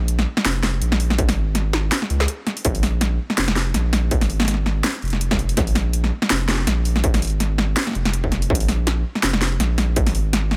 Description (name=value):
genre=half-time drum and bass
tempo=164 BPM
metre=4/4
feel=swing 56% on 16ths, half-time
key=unclear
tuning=A4 = 440 Hz
part: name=saturated sub bass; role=bass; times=0.0-10.6 s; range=F1 to Db2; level=-23 LUFS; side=equal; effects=none
part: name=drum and bass drum kit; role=drums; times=0.1-10.6 s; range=hi-hat, snare drum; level=-24 LUFS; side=equal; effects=overdrive
part: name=electronic kick drum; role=drums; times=1.2-10.0 s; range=none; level=-24 LUFS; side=equal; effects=distortion
room=little or no reverb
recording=none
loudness=-20 LUFS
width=mono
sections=0.0-10.6 A section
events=break 2.3-2.6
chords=none